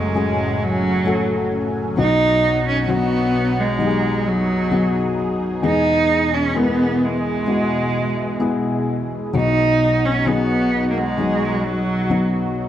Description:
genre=pop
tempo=65 BPM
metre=4/4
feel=straight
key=B major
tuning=A4 = 440 Hz
part: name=rich cello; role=melody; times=0.0-12.6 s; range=F#3 to D#4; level=-20 LUFS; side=right 2 dB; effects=none
part: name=dark grand piano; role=accompaniment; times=0.0-12.7 s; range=F#1 to B4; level=-21 LUFS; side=left 3 dB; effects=none
part: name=lush unison pad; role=sustained chords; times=0.0-12.7 s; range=A2 to G#5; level=-26 LUFS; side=right 1 dB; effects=chorus, phaser
room=wet recital hall reverb, RT60 1.2 s, studio reverb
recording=dark, warm production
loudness=-16 LUFS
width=side -11 dB against mid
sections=0.0-12.7 A section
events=none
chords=0.0 F#madd9; 2.0 B; 5.6 E; 9.3 B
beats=0.16 1.07 | 1.98 2.89 3.80 4.72 | 5.63 6.55 7.48 8.41 | 9.34 10.27 11.19 12.10

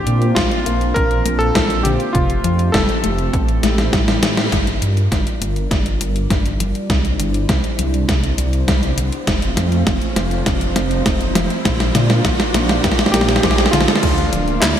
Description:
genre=synthwave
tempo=101 BPM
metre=4/4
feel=straight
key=unclear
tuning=A4 = 440 Hz
part: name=warm electric grand piano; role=melody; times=0.0-4.2, 13.1-14.8 s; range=E4 to Bb4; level=-21 LUFS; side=equal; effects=digital delay
part: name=warm analog pad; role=sustained chords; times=0.0-14.8 s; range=G3 to F5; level=-24 LUFS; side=right 2 dB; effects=chorus, sidechain pumping
part: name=warbly dusty pluck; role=arpeggios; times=0.0-14.8 s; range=C3 to F4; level=-26 LUFS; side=left 3 dB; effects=none
part: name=dark detuned saw bass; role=bass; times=0.0-14.8 s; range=D1 to Bb2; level=-20 LUFS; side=equal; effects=tube saturation, sidechain pumping
part: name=gated 80s digital drum machine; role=drums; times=0.1-14.8 s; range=crash cymbal, handclaps, hi-hat, snare drum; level=-19 LUFS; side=equal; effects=gated reverb, gated reverb snare, overdrive
part: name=electronic kick drum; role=drums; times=0.4-14.1 s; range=none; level=-22 LUFS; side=equal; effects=none
part: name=riser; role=sound effects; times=7.4-14.0 s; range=none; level=-28 LUFS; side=right 1 dB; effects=none
room=moderate lush hall reverb, RT60 2.7 s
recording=bright 1980s-style digital production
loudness=-14 LUFS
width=side -10 dB against mid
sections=0.0-4.5 A section; 4.5-14.0 B section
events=drum fill 3.6-4.5, 4.5-14.0; band accent 4.4; filter sweep on analog synth pad 4.5-14.0; riser 7.4-14.0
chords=0.0 Bbadd9; 2.1 Fadd9; 3.3 Am7; 4.5 Gm7; 6.9 Cadd9; 9.3 F; 11.7 Bbadd9; 14.0 Bb/D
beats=0.36 0.96 1.55 | 2.15 2.74 3.33 3.93 | 4.52 5.12 5.71 6.30 | 6.90 7.49 8.09 8.68 | 9.27 9.87 10.46 11.06 | 11.65 12.24 12.84 13.43 | 14.03 14.62

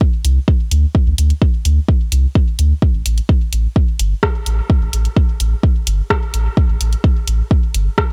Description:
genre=dub techno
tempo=128 BPM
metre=4/4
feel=straight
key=unclear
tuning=A4 = 440 Hz
part: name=electronic kick drum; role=drums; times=0.0-8.1 s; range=none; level=-16 LUFS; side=equal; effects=none
part: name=soft dub sub bass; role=bass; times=0.2-7.9 s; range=G1 to D2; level=-17 LUFS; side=equal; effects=sidechain pumping
part: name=deep house drum kit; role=drums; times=0.2-8.1 s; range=hi-hat, rim click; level=-24 LUFS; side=equal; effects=none
room=little or no reverb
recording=none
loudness=-16 LUFS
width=mono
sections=0.0-8.1 A section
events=none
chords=none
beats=0.01 0.48 | 0.95 1.42 1.89 2.35 | 2.82 3.29 3.76 4.23 | 4.70 5.17 5.63 6.10 | 6.57 7.04 7.51 7.98

